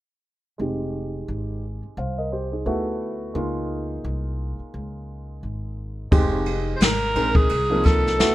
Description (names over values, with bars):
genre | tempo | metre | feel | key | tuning
hip hop, jazz-hop | 87 BPM | 4/4 | swing 58% on 16ths | F minor | A4 = 442 Hz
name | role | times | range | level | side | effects
dark concert grand piano | accompaniment | 0.6-8.3 s | F3 to F5 | -26 LUFS | equal | low-pass filter
upright bass | bass | 0.6-8.3 s | F1 to D2 | -29 LUFS | equal | none
jazz brush drum kit | drums | 6.1-8.3 s | hi-hat, kick drum, ride cymbal, snare drum | -20 LUFS | equal | vintage 12-bit sampler grit
breathy tenor saxophone | melody | 6.8-8.3 s | Ab4 to C5 | -22 LUFS | equal | none
room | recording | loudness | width
small room ambience | rough home demo mix | -21 LUFS | side -15 dB against mid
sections
0.6-6.1 A section; 6.1-8.3 B section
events
filter sweep on grand piano 0.6-6.1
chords
0.6 Fm7; 2.7 D6; 3.4 Db6; 6.1 Fm7